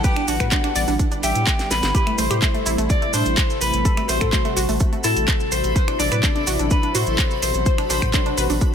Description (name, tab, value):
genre	progressive house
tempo	126 BPM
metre	4/4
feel	straight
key	A dorian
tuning	A4 = 440 Hz
part	electric guitar at the edge of break-up	melody	0.0-8.6 s	F#4 to D5	-24 LUFS	left 2 dB	sidechain pumping, ping-pong delay
part	warm analog pad	sustained chords	0.0-8.7 s	B2 to F#5	-29 LUFS	equal	chorus, sidechain pumping
part	analog pluck	arpeggios	0.0-8.7 s	A3 to E5	-27 LUFS	equal	chorus, sidechain pumping, tape echo
part	electronic kick drum	drums	0.0-8.7 s	none	-20 LUFS	equal	none
part	house drum kit	drums	0.0-8.7 s	finger snaps, handclaps, hi-hat, snare drum	-26 LUFS	right 1 dB	none
part	maracas	percussion	0.0-8.7 s	none	-28 LUFS	right 3 dB	none
part	backwards swelling texture	texture	0.0-8.7 s	E4 to B5	-35 LUFS	left 1 dB	built-in reverb, sidechain pumping
part	saturated sub bass	bass	0.3-8.6 s	G1 to A2	-24 LUFS	equal	sidechain pumping
room	light reverb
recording	none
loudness	-17 LUFS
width	side -8 dB against mid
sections	0.0-8.7 A section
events	drum fill 1.6-1.9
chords	0.0 Gmaj7/A; 1.9 Am7; 5.8 D13/A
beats	| 0.04 0.52 0.99 1.47 | 1.95 2.42 2.90 3.38 | 3.85 4.33 4.80 5.28 | 5.76 6.23 6.71 7.18 | 7.66 8.14 8.61